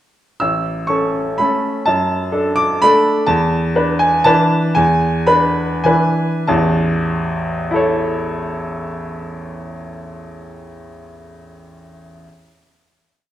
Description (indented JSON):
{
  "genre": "classical, piano waltz",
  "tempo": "92-133 BPM",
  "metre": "3/4",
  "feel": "rubato",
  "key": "A major",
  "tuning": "A4 = 440 Hz",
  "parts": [
    { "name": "bright upright piano", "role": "solo", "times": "0.4-12.2 s", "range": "A1 to E6", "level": "-15 LUFS", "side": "equal", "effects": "none" }
  ],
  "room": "wet recital hall reverb, RT60 1.6 s",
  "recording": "none",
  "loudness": "-14 LUFS",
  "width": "side -12 dB against mid",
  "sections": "0.4-6.5 A section; 6.5-10.1 final chord",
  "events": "slowing down 2.6-6.5",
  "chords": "0.4 A; 1.9 D/F#; 3.3 E7sus4; 6.5 A"
}